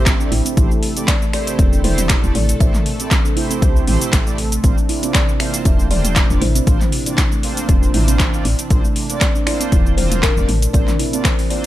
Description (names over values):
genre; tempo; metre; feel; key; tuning
afro house; 118 BPM; 4/4; swing 55% on 16ths; unclear; A4 = 437 Hz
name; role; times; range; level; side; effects
warm analog pad; sustained chords; 0.0-11.7 s; C3 to A4; -28 LUFS; equal; chorus, sidechain pumping
mellow synth brass; stabs; 0.0-11.7 s; A3 to D5; -27 LUFS; right 3 dB; chorus, sidechain pumping, tape echo
woody FM bass; bass; 0.0-10.8 s; E1 to C2; -19 LUFS; equal; sidechain pumping
handpan; arpeggios; 0.1-11.4 s; E3 to E4; -24 LUFS; right 4 dB; sidechain pumping, tape echo
deep house drum kit; drums; 0.1-11.6 s; cabasa, finger snaps, handclaps, hi-hat, toms; -21 LUFS; equal; overdrive
electronic kick drum; drums; 0.1-11.4 s; none; -17 LUFS; equal; overdrive
kalimba; melody; 1.1-11.7 s; Bb4 to E5; -27 LUFS; left 4 dB; tape echo
room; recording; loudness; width
digital ambience; none; -14 LUFS; side -14 dB against mid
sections
0.0-11.7 A section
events
none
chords
0.0 Am7; 4.6 Bbadd9